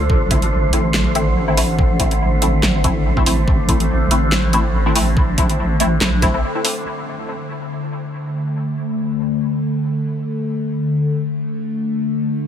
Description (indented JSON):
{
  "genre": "deep dubstep",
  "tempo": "142 BPM",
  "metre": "4/4",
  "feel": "swing 55% on 16ths, half-time",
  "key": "unclear",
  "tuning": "A4 = 440 Hz",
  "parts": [
    { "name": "overtone-sweeping drone", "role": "sustained chords", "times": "0.0-12.5 s", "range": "D3 to A3", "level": "-21 LUFS", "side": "left 2 dB", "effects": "chorus, built-in reverb, vintage 12-bit sampler grit" },
    { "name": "deep soft wobble bass", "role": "bass", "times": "0.0-6.4 s", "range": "A1 to Bb1", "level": "-18 LUFS", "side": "equal", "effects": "chorus" },
    { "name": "wind-like tuned noise texture", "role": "texture", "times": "0.0-6.9 s", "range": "C5", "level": "-27 LUFS", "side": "right 1 dB", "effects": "built-in reverb" },
    { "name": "electronic kick drum", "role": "drums", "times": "0.1-6.3 s", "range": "none", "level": "-18 LUFS", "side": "equal", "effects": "small room ambience" },
    { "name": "filtered dub chord stab", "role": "stabs", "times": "0.3-6.7 s", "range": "A3 to E4", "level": "-23 LUFS", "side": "left 2 dB", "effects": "phaser, ensemble chorus, dub echo" },
    { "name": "dubstep drum kit", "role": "drums", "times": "0.3-6.7 s", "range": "handclaps, hi-hat, snare drum", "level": "-21 LUFS", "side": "right 1 dB", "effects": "low-pass filter on hats, small room ambience, low-pass filter on snare" }
  ],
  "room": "light reverb",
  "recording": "none",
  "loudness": "-16 LUFS",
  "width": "side -9 dB against mid",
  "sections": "0.0-6.9 A section; 6.9-12.5 B section",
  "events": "drop 0.0-6.9; break 6.4-6.9; filter sweep on synth drone 6.9-12.5",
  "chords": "0.1 Am; 6.9 D5"
}